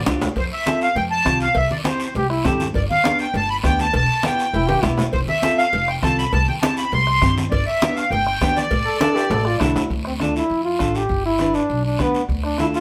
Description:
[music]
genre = latin, cumbia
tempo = 201 BPM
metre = 4/4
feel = straight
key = D dorian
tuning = A4 = 440 Hz
[part]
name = accordion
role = melody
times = 0.0-9.6 s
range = C5 to C6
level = -22 LUFS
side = equal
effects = light tremolo tuning
[part]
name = clean electric guitar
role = accompaniment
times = 0.1-12.8 s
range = B3 to B4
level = -27 LUFS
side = equal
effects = none
[part]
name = upright bass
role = bass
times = 0.1-12.8 s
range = E1 to G2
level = -27 LUFS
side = equal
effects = none
[part]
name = bombo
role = percussion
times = 0.1-12.7 s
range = none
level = -29 LUFS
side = equal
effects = none
[part]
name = congas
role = percussion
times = 0.1-12.7 s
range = none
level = -29 LUFS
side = equal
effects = none
[part]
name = cowbell and timbales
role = percussion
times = 0.1-9.8 s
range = none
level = -31 LUFS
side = equal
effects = none
[part]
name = guiro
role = percussion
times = 0.1-12.8 s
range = none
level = -35 LUFS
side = equal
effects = none
[part]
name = bright trombone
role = second line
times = 2.2-5.1, 8.9-12.8 s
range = B3 to A4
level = -24 LUFS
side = equal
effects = none
[sound]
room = moderate studio reverb, RT60 0.8 s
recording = band playing live in one room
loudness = -20 LUFS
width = mono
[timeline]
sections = 0.4-9.9 A section; 9.9-12.8 B section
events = drum fill 0.0-0.4, 4.7-5.1, 9.0-9.9; trombone solo 9.9-12.8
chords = 0.4 F; 1.6 C; 2.7 G; 3.9 Em; 5.1 F; 6.3 C; 7.5 G; 8.7 Asus4; 9.9 Dm; 11.1 G; 12.3 Dm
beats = 0.06 | 0.36 0.66 0.96 1.26 | 1.56 1.85 2.15 2.45 | 2.75 3.05 3.35 3.64 | 3.94 4.24 4.54 4.84 | 5.14 5.43 5.73 6.03 | 6.33 6.63 6.92 7.22 | 7.52 7.82 8.12 8.41 | 8.71 9.01 9.31 9.61 | 9.90 10.20 10.50 10.80 | 11.10 11.40 11.70 11.99 | 12.29 12.59

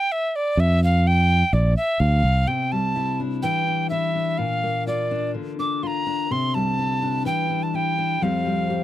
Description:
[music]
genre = indie folk with a building arrangement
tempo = 125 BPM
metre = 4/4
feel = straight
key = C mixolydian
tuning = A4 = 440 Hz
[part]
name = soprano recorder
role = melody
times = 0.0-8.8 s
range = D5 to D6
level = -23 LUFS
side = right 1 dB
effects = none
[part]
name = fingered electric bass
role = bass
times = 0.6-2.5 s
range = Bb1 to F2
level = -17 LUFS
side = equal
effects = none
[part]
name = fingerpicked steel-string acoustic guitar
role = accompaniment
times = 2.5-8.8 s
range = F2 to G4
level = -24 LUFS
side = left 3 dB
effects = none
[sound]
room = little or no reverb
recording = dry, close 1970s-style studio recording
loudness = -20 LUFS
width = side -13 dB against mid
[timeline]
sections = 0.0-2.5 A section; 2.5-8.8 B section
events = none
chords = 0.0 Csus2 (rootless); 0.6 Fsus2; 1.5 Bb; 2.5 Cadd9; 4.4 Bb; 6.3 Cadd9; 8.2 Fsus2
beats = 0.10 | 0.57 1.04 1.52 2.00 | 2.47 2.95 3.43 3.91 | 4.38 4.86 5.34 5.82 | 6.30 6.78 7.26 7.74 | 8.22 8.70

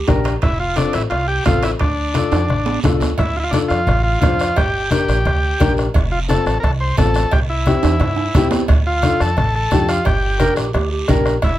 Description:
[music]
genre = latin, cumbia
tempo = 174 BPM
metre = 4/4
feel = straight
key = D minor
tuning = A4 = 440 Hz
[part]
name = growling clarinet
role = second line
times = 0.0-0.3, 10.4-11.3 s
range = G4 to Bb4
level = -23 LUFS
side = right 4 dB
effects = none
[part]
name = warm upright piano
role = accompaniment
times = 0.1-11.3 s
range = C4 to C5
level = -20 LUFS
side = left 4 dB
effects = none
[part]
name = upright bass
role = bass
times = 0.1-11.6 s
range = F1 to G2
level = -20 LUFS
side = right 1 dB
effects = none
[part]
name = bombo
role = percussion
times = 0.1-11.6 s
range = none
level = -20 LUFS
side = right 1 dB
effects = none
[part]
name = congas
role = percussion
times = 0.1-11.3 s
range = none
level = -22 LUFS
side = left 2 dB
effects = none
[part]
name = guiro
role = percussion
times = 0.1-11.6 s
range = none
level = -32 LUFS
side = right 4 dB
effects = none
[part]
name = timbales and cowbell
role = percussion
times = 0.1-11.6 s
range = none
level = -27 LUFS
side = right 6 dB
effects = none
[part]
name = overdriven combo organ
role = melody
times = 0.4-11.6 s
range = D4 to C5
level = -20 LUFS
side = equal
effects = none
[sound]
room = little or no reverb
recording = close, detailed microphones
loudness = -14 LUFS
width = side -14 dB against mid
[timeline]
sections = 0.0-3.2 A section; 3.2-11.6 A section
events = drum fill 2.3-3.2, 7.8-8.7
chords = 0.4 F; 1.8 Dm; 4.6 Gm; 5.9 F; 7.3 C; 8.7 Dm; 10.1 Gm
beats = 0.08 | 0.43 0.77 1.12 1.46 | 1.81 2.15 2.50 2.84 | 3.19 3.53 3.88 4.22 | 4.56 4.91 5.25 5.60 | 5.94 6.29 6.63 6.97 | 7.32 7.66 8.00 8.35 | 8.69 9.03 9.38 9.72 | 10.06 10.41 10.75 11.09 | 11.44

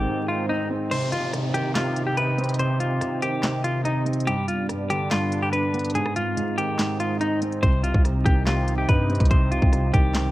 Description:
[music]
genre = hip hop, trap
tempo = 143 BPM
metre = 4/4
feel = half-time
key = C harmonic minor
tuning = A4 = 440 Hz
[part]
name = semi-hollow electric guitar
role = melody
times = 0.0-10.3 s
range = Eb4 to C5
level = -26 LUFS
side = left 1 dB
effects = none
[part]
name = dark baby grand piano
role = accompaniment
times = 0.0-10.3 s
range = G2 to Eb4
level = -26 LUFS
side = right 1 dB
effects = none
[part]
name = sweeping resonant pad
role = sustained chords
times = 0.0-10.3 s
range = C3 to G4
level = -32 LUFS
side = left 1 dB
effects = chorus
[part]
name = growling 808-style bass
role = bass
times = 0.0-0.1, 7.6-10.3 s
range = C2 to G2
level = -24 LUFS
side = equal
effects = none
[part]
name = swell and downlifter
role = sound effects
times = 0.1-4.3 s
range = none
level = -36 LUFS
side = equal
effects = none
[part]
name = trap drum kit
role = drums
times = 0.9-10.2 s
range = crash cymbal, handclaps, hi-hat, kick drum, rim click, snare drum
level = -23 LUFS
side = equal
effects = vintage 12-bit sampler grit
[sound]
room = light reverb, digital ambience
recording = vinyl crackle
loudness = -20 LUFS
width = side -16 dB against mid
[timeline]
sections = 0.9-10.3 A section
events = break 0.1-0.9; swell 0.1-0.9; kick muted 0.9-7.6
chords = 0.0 Ab; 0.9 Cm; 4.3 G; 5.9 Ab; 7.6 Cm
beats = 0.07 0.49 | 0.91 1.33 1.75 2.17 | 2.59 3.01 3.43 3.85 | 4.27 4.69 5.11 5.53 | 5.95 6.37 6.79 7.21 | 7.63 8.05 8.47 8.89 | 9.31 9.72 10.14

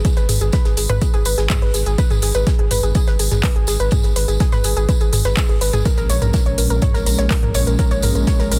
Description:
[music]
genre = melodic techno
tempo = 124 BPM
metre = 4/4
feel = straight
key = G# minor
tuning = A4 = 441 Hz
[part]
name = warbly dusty pluck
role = arpeggios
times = 0.0-8.5 s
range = G#4 to C#5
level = -25 LUFS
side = equal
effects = chorus, sidechain pumping, delay
[part]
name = round analog bass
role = bass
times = 0.0-8.6 s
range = G#1 to A#1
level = -22 LUFS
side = equal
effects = sidechain pumping
[part]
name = damped 70s drum kit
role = drums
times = 0.0-8.6 s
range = hi-hat, snare drum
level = -39 LUFS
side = equal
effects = sidechain pumping on hats, high-pass filter on hats, high-pass filter on snare, high-pass filter on room
[part]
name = electronic kick drum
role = drums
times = 0.0-8.4 s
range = none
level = -20 LUFS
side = equal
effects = none
[part]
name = techno drum kit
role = drums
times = 0.0-8.6 s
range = handclaps, hi-hat, toms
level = -26 LUFS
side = equal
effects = sidechain pumping on hats, sidechain pumping on toms, sidechain pumping on cymbals
[part]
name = tambourine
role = percussion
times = 0.1-8.6 s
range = none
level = -32 LUFS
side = equal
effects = none
[part]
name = warm analog pad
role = sustained chords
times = 5.9-8.6 s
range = A#2 to C#4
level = -27 LUFS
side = equal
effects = subtle chorus, sidechain pumping
[sound]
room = digital ambience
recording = dense, heavily limited modern master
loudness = -17 LUFS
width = mono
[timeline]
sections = 0.0-8.6 A section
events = none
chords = 0.0 G#m; 5.9 A#m7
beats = | 0.05 0.53 1.02 1.50 | 1.98 2.47 2.95 3.44 | 3.92 4.40 4.89 5.37 | 5.86 6.34 6.82 7.31 | 7.79 8.27

